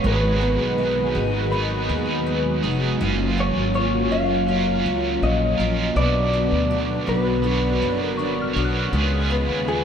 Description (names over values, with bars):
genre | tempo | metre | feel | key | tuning
dream pop | 81 BPM | 4/4 | straight | F# major | A4 = 440 Hz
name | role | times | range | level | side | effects
electric guitar at the edge of break-up | melody | 0.0-9.8 s | G#4 to E#5 | -25 LUFS | equal | spring reverb, ping-pong delay
cranked stack guitar | accompaniment | 0.0-9.8 s | G#2 to C#5 | -26 LUFS | right 6 dB | overdrive, harmonic tremolo, lush chorus
phased analog pad | sustained chords | 0.0-9.8 s | C#3 to B4 | -26 LUFS | equal | phaser, chorus
picked twelve-string acoustic guitar | arpeggios | 0.0-9.8 s | G#2 to C#5 | -28 LUFS | left 4 dB | ensemble chorus, ping-pong delay
upright bass | bass | 0.0-9.8 s | E#1 to D#2 | -24 LUFS | equal | none
soft synth bell | texture | 0.0-3.3, 8.2-9.7 s | B5 to F#6 | -34 LUFS | left 3 dB | chorus, ping-pong delay
room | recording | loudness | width
light reverb, small room ambience | dark, warm production | -19 LUFS | side -8 dB against mid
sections
0.0-9.8 A section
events
none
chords
0.0 C#7; 3.0 F#maj7; 6.0 Bmadd9; 8.9 C#7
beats
| 0.04 0.78 1.52 2.26 | 3.00 3.75 4.49 5.23 | 5.97 6.71 7.45 8.19 | 8.93 9.67